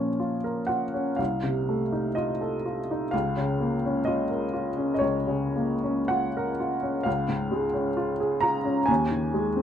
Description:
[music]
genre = classical, romantic nocturne for solo piano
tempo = 52-67 BPM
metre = 4/4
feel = rubato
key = Bb minor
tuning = A4 = 441 Hz
[part]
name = clear upright piano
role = solo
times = 0.0-9.6 s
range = C2 to Bb5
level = -24 LUFS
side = equal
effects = none
[sound]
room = light reverb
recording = dark, warm production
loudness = -24 LUFS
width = side -9 dB against mid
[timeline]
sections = 0.0-9.6 A section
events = none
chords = 0.0 Bbm; 1.2 F7/C; 3.1 Bbm/Db; 7.1 Db; 8.9 Ab5/Eb

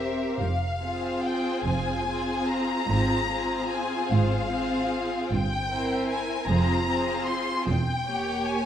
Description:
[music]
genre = classical, slow romantic movement for string orchestra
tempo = 49 BPM (dotted quarters)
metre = 6/8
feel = uneven beats, rubato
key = F minor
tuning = A4 = 441 Hz
[part]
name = warm studio violin section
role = melody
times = 0.0-8.7 s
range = E5 to C6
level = -30 LUFS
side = left 3 dB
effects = none
[part]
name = rich studio violin section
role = second line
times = 0.0-8.7 s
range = G4 to C#5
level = -33 LUFS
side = left 2 dB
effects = none
[part]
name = rich studio viola section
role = accompaniment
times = 0.0-8.7 s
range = Bb3 to G4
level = -29 LUFS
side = equal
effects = none
[part]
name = warm studio cello section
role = bass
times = 0.0-8.7 s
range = E2 to Ab2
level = -32 LUFS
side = right 2 dB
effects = none
[part]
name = warm studio double bass section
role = bass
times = 0.0-8.7 s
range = E1 to Ab1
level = -29 LUFS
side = right 2 dB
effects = none
[sound]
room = moderate scoring stage reverb, RT60 1.9 s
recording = none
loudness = -24 LUFS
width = side -10 dB against mid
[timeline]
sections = 0.0-8.7 A section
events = none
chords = 0.4 Fm; 2.9 Fm/Ab; 5.3 C7/G; 6.5 Fm; 7.7 Edim7

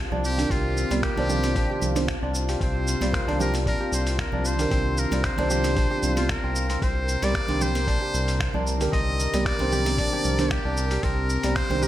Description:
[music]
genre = organic downtempo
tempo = 114 BPM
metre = 4/4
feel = swing 53% on 16ths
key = C minor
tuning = A4 = 439 Hz
[part]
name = warm analog pad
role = sustained chords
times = 0.0-11.9 s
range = C3 to Bb4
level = -32 LUFS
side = left 2 dB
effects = chorus, sidechain pumping
[part]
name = kora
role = arpeggios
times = 0.0-11.9 s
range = G3 to G4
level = -30 LUFS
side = right 1 dB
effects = digital delay
[part]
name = round analog bass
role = bass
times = 0.0-11.9 s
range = Bb1 to C2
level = -27 LUFS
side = equal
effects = none
[part]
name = congas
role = percussion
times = 0.1-11.9 s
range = none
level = -34 LUFS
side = right 5 dB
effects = none
[part]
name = trumpet with metal mute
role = melody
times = 0.2-11.9 s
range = F4 to Eb5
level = -30 LUFS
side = equal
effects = digital delay
[part]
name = dusty soul sampler-style drum kit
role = drums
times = 0.2-11.9 s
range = cabasa, finger snaps, hi-hat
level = -32 LUFS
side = equal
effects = none
[part]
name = muted felt-like synth keys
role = accompaniment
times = 0.4-11.9 s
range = D3 to C5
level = -30 LUFS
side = right 3 dB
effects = chorus, sidechain pumping
[part]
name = electronic kick drum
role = drums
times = 0.5-11.7 s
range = none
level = -29 LUFS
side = equal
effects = none
[sound]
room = light reverb, digital ambience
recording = none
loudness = -22 LUFS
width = side -13 dB against mid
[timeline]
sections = 0.0-11.9 A section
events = none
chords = 0.0 Cmadd9

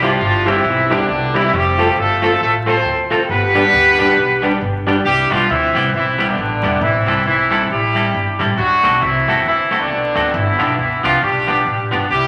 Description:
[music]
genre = ska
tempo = 136 BPM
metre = 4/4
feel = swing 58% on 8ths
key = C major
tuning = A4 = 441 Hz
[part]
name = clear horn section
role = melody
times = 0.0-12.3 s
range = D3 to C5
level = -17 LUFS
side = equal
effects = none
[part]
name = semi-hollow electric guitar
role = accompaniment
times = 0.0-12.1 s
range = F3 to A4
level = -22 LUFS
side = equal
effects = spring reverb, dub echo
[part]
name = mellow tonewheel organ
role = stabs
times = 0.0-5.0 s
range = D4 to C5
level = -24 LUFS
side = equal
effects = chorus vibrato, slow rotary speaker
[part]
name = upright bass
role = bass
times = 0.0-12.3 s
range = E1 to E2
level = -26 LUFS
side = equal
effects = none
[sound]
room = wet large studio reverb, RT60 1.4 s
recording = vinyl crackle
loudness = -15 LUFS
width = mono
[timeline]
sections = 0.0-5.1 A section; 5.1-12.3 B section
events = none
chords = 0.0 C; 1.5 F; 3.3 G; 5.1 Cmaj7; 6.8 Am7; 8.6 D7; 10.3 G7

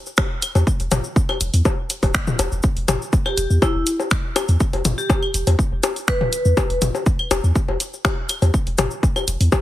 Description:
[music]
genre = minimal techno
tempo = 122 BPM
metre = 4/4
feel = straight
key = E minor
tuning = A4 = 440 Hz
[part]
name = cabasa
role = percussion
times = 0.1-9.6 s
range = none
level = -31 LUFS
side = left 2 dB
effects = none
[part]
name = electronic kick drum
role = drums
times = 0.2-9.6 s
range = none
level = -20 LUFS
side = equal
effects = small room ambience
[part]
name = punchy analog drum machine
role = drums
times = 0.2-9.5 s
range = finger snaps, hi-hat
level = -23 LUFS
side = right 1 dB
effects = overdrive, small room ambience
[part]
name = electronic bongos, claves and toms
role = percussion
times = 0.2-9.6 s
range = none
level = -23 LUFS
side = left 4 dB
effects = small room ambience, dub echo
[part]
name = punchy sub bass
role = bass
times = 0.6-9.5 s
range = D1 to E2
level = -19 LUFS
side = equal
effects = sidechain pumping
[part]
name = vibraphone with medium hard mallets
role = melody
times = 3.3-6.8 s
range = E4 to B4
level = -24 LUFS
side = equal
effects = dub echo
[sound]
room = little or no reverb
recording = heavily compressed radio sound, multiband compression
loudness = -17 LUFS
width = side -14 dB against mid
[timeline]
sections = 0.0-9.6 A section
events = none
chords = none

